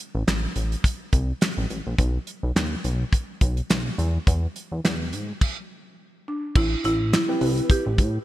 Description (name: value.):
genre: early-eighties boogie funk.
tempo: 105 BPM.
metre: 4/4.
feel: swing 56% on 16ths.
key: unclear.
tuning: A4 = 440 Hz.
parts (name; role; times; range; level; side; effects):
chorused synth bass; bass; 0.1-8.2 s; A1 to A2; -25 LUFS; equal; none.
damped 70s drum kit; drums; 0.3-8.1 s; crash cymbal, handclaps, hi-hat, kick drum, snare drum; -23 LUFS; equal; gated reverb.
buzzing marimba with medium mallets; melody; 6.3-8.2 s; D4 to G4; -25 LUFS; right 1 dB; digital delay.
tine electric piano; accompaniment; 7.3-7.8 s; C4 to B4; -27 LUFS; left 1 dB; ensemble chorus.
room: light reverb, small room ambience.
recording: bright 1980s-style digital production.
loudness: -21 LUFS.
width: side -15 dB against mid.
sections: 0.0-6.6 A section; 6.6-8.2 B section.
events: stop 5.4-6.6.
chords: 0.0 Am; 2.0 B; 4.0 E; 6.6 Am9.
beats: 0.27 0.84 1.41 | 1.98 2.56 3.13 3.70 | 4.27 4.84 5.41 5.98 | 6.56 7.13 7.70.